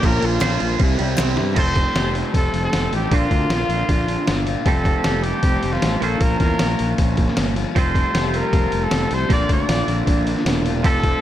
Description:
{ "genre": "indie rock", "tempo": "155 BPM", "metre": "4/4", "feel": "straight", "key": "unclear", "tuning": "A4 = 435 Hz", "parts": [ { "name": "warm trumpet", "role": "melody", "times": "0.0-11.2 s", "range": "F4 to D5", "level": "-25 LUFS", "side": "left 1 dB", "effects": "slapback echo" }, { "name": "phased analog pad", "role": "sustained chords", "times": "0.0-1.6 s", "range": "Db4 to C6", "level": "-34 LUFS", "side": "left 3 dB", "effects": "none" }, { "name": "raw garage guitar", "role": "riff", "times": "0.0-11.2 s", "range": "F3 to G4", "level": "-26 LUFS", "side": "left 5 dB", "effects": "overdrive, slapback echo" }, { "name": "twangy electric guitar", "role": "riff", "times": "0.0-11.2 s", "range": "Bb2 to C5", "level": "-25 LUFS", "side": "right 6 dB", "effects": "wide subtle chorus, slapback echo" }, { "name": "fuzz fingered electric bass", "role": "bass", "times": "0.0-11.1 s", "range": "E1 to G2", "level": "-23 LUFS", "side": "equal", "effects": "overdrive" }, { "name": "trip hop sampler-style drum kit", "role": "drums", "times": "0.0-11.1 s", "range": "crash cymbal, hi-hat, kick drum, snare drum", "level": "-21 LUFS", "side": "equal", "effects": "none" }, { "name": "group handclap", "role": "percussion", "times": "0.4-1.3 s", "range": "none", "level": "-35 LUFS", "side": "left 7 dB", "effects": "none" } ], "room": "light reverb, digital ambience", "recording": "none", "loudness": "-17 LUFS", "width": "side -12 dB against mid", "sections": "0.0-1.6 A section; 1.6-11.2 B section", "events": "drum fill 1.4", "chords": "0.0 Bbmadd9; 0.8 C; 1.6 Fadd9; 3.1 Bbadd9; 4.7 Fadd9; 6.0 Bbmadd9; 7.8 Fadd9; 9.3 Bbadd9" }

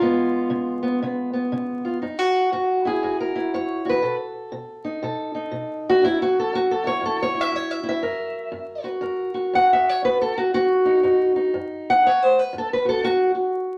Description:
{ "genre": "acoustic country blues, solo or duo", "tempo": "120 BPM", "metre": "4/4", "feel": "swing 62% on 8ths", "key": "unclear", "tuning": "A4 = 440 Hz", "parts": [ { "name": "fingerpicked steel-string acoustic guitar", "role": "solo", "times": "0.0-13.8 s", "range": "F#2 to F#5", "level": "-22 LUFS", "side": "equal", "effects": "none" } ], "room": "wet club reverb, RT60 0.7 s", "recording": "vinyl crackle", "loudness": "-22 LUFS", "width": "mono", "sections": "0.0-2.0 A section; 2.0-13.8 B section", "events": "steel-string acoustic guitar solo 2.0-13.8", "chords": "0.0 C#7; 2.0 F#9; 4.0 B7; 6.0 F#7; 10.0 F#m6" }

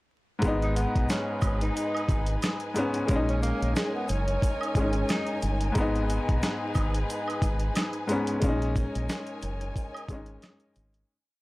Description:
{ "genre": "hip hop, boom-bap hip-hop", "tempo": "90 BPM", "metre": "4/4", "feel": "swing 58% on 16ths", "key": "G# minor", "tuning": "A4 = 440 Hz", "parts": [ { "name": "bright upright piano", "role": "accompaniment", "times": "0.4-11.1 s", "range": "G#2 to D#4", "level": "-30 LUFS", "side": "left 1 dB", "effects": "cassette tape" }, { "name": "warm studio string section", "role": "sustained chords", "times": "0.4-11.1 s", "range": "D#4 to G#5", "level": "-35 LUFS", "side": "equal", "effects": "none" }, { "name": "deep dub fingered electric bass", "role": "bass", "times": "0.4-11.0 s", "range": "F#1 to B1", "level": "-29 LUFS", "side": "equal", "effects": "none" }, { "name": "dusty soul sampler-style drum kit", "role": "drums", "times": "0.4-11.1 s", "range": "hi-hat, kick drum, snare drum", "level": "-29 LUFS", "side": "equal", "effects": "none" }, { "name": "tube shaker and woodblock", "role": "percussion", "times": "0.4-10.9 s", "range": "none", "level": "-39 LUFS", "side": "right 2 dB", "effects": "none" }, { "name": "breathy tenor saxophone", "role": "melody", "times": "0.6-5.4 s", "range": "G#3 to D#4", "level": "-33 LUFS", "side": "equal", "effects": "none" } ], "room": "studio ambience", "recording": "dry, gritty hardware recording, transformer saturation, vinyl crackle", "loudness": "-25 LUFS", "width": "side -20 dB against mid", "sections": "0.4-11.1 hook", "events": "fade-out 8.4-11.1", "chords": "0.4 G#m; 3.1 D#7sus4; 5.8 G#m; 8.4 D#7sus4" }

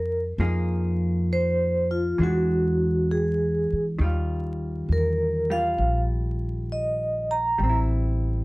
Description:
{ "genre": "jazz ballad", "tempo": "67 BPM", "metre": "4/4", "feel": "swing 69% on 8ths", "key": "unclear", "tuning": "A4 = 439 Hz", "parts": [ { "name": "vibraphone with medium mallets", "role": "melody", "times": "0.0-7.8 s", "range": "F4 to Bb5", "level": "-24 LUFS", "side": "right 1 dB", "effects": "none" }, { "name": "vintage hollow-body jazz guitar", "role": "accompaniment", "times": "0.0-8.4 s", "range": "Eb3 to Ab4", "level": "-28 LUFS", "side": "equal", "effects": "none" }, { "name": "upright bass", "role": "bass", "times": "0.0-8.4 s", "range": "A1 to F2", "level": "-26 LUFS", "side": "equal", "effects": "none" } ], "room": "light reverb", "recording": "vinyl crackle", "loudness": "-22 LUFS", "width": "side -22 dB against mid", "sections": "0.0-8.4 A section", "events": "none", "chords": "0.4 Fm7; 2.2 E9; 4.0 Ebadd9; 7.6 Am7" }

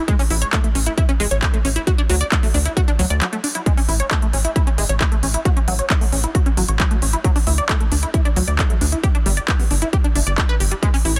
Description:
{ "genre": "uplifting trance", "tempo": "134 BPM", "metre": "4/4", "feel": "straight", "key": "A major", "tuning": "A4 = 439 Hz", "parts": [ { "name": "tight sequenced synth", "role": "arpeggios", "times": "0.0-11.2 s", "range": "F#3 to D5", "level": "-26 LUFS", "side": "equal", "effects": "chorus, phaser, sidechain pumping, digital delay" }, { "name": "electronic kick drum", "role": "drums", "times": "0.1-10.9 s", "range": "none", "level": "-21 LUFS", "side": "equal", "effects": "studio reverb" }, { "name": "techno drum kit", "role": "drums", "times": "0.1-11.2 s", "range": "handclaps, hi-hat", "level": "-26 LUFS", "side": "equal", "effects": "studio reverb, sidechain pumping on hats" }, { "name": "tight sequencer bass", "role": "bass", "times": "0.3-11.2 s", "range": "G1 to D2", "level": "-22 LUFS", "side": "equal", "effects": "sidechain pumping" } ], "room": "digital ambience", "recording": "dense, heavily limited modern master", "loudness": "-18 LUFS", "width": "mono", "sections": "0.0-11.2 A section", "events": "break 3.2-3.7", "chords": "0.1 A; 1.9 N.C.; 3.7 A; 5.5 F#m/A (rootless); 7.2 Dsus2; 9.0 G5" }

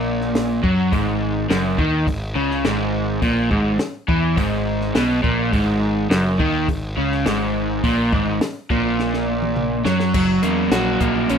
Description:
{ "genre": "indie rock", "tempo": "104 BPM", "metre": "4/4", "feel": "straight", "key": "unclear", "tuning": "A4 = 440 Hz", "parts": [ { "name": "crunchy overdriven guitar", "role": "riff", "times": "0.0-11.4 s", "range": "F#2 to F#4", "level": "-19 LUFS", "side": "equal", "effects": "none" }, { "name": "fuzz picked electric bass", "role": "bass", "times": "0.0-11.4 s", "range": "F#1 to F#2", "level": "-25 LUFS", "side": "equal", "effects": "overdrive" }, { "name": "compact cocktail drum kit", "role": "drums", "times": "0.2-11.4 s", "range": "crash cymbal, hi-hat, kick drum, snare drum, toms", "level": "-23 LUFS", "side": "left 1 dB", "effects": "none" } ], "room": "light reverb", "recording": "rough home demo mix", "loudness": "-17 LUFS", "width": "side -7 dB against mid", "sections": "0.0-10.1 A section; 10.1-11.4 B section", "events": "drum fill 9.0-10.1", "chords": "0.0 N.C.; 10.1 F#" }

